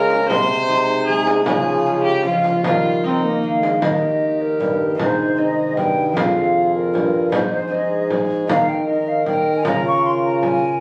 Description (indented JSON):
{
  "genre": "classical, renaissance-style consort dance",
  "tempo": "154 BPM",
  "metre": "3/4",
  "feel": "straight",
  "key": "Eb mixolydian",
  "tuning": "A4 = 437 Hz",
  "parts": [
    { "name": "hollow concert flute", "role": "melody", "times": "0.0-10.8 s", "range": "Bb4 to Db6", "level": "-24 LUFS", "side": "equal", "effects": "none" },
    { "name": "rich viola", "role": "second line", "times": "0.0-10.8 s", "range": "Eb4 to C5", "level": "-27 LUFS", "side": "equal", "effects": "none" },
    { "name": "concert harp", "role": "accompaniment", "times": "0.0-10.8 s", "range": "F2 to Bb4", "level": "-27 LUFS", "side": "equal", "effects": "none" },
    { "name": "mellow trombone", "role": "accompaniment", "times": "0.0-10.6 s", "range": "F3 to F4", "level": "-26 LUFS", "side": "equal", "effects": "none" },
    { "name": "mellow bassoon", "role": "bass", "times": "0.0-10.8 s", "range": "F2 to F3", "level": "-24 LUFS", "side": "equal", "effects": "none" },
    { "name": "frame drum", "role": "percussion", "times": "0.1-10.6 s", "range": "none", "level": "-26 LUFS", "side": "equal", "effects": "none" }
  ],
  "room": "light reverb",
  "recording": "recorded on a phone in the room, studio reverb",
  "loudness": "-18 LUFS",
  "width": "mono",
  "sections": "0.0-3.8 A section; 3.8-10.8 B section",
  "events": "none",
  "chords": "0.3 Ab/C; 1.5 Db; 2.6 Eb; 5.0 Ab; 6.2 Fm; 7.3 Ab; 8.5 Eb5; 9.7 Bbm/Db"
}